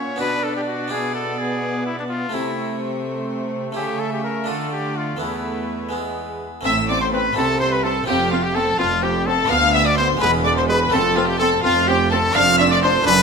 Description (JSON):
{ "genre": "classical, baroque-style concerto movement with solo episodes", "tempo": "84 BPM (dotted quarters)", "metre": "6/8", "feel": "straight", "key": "A minor", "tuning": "A4 = 441 Hz", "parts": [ { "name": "bright trumpet", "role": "melody", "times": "0.0-13.2 s", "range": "D4 to F5", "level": "-22 LUFS", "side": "left 3 dB", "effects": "none" }, { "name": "warm chamber violin section", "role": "melody", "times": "0.0-13.2 s", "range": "E5 to F6", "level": "-26 LUFS", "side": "left 1 dB", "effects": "none" }, { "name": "warm chamber violin section", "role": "second line", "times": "0.0-13.2 s", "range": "F4 to F5", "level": "-25 LUFS", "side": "left 2 dB", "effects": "none" }, { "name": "dark chamber viola section", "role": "accompaniment", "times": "0.0-13.1 s", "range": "G#3 to D4", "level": "-27 LUFS", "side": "right 1 dB", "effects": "none" }, { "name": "harpsichord", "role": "accompaniment", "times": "0.0-13.2 s", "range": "D2 to C5", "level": "-27 LUFS", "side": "left 1 dB", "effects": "none" }, { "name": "rich chamber cello section", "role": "bass", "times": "0.0-13.2 s", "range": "D2 to D3", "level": "-26 LUFS", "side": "right 4 dB", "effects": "none" }, { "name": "warm studio double bass section", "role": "bass", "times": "6.7-13.2 s", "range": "E1 to D2", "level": "-26 LUFS", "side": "right 4 dB", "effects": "none" } ], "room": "moderate recital hall reverb, RT60 1.4 s", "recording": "minimal, uncompressed stereo recording", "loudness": "-17 LUFS", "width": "side -5 dB against mid", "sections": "0.0-6.7 A section; 6.7-13.2 B section", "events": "none", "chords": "0.2 Bm; 0.9 E7/B; 2.3 Am/C; 3.8 A/C#; 4.5 Dm; 5.2 Esus4; 5.9 E; 6.7 Am; 7.4 Am/C; 8.1 F; 9.5 Bm7b5/D; 10.2 E; 10.9 F; 12.4 Dm7/F" }